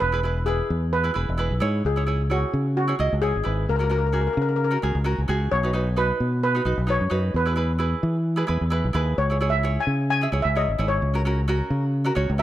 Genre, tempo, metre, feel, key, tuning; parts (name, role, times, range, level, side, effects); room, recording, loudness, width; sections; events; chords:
calypso; 131 BPM; 4/4; swing 54% on 16ths; E major; A4 = 440 Hz
steel pan; melody; 0.0-12.4 s; F#4 to G#5; -26 LUFS; left 1 dB
fingered electric bass; bass; 0.0-12.4 s; E1 to E3; -23 LUFS; equal
tenor ukulele; accompaniment; 0.1-12.4 s; C#4 to E5; -28 LUFS; right 2 dB
light reverb, small room ambience; -21 LUFS; side -13 dB against mid
0.0-12.4 A section
steel pan solo 0.0-12.4
0.0 E; 1.8 C#m; 3.7 F#/C#; 5.5 B; 7.3 E; 9.2 C#m; 11.0 F#/C#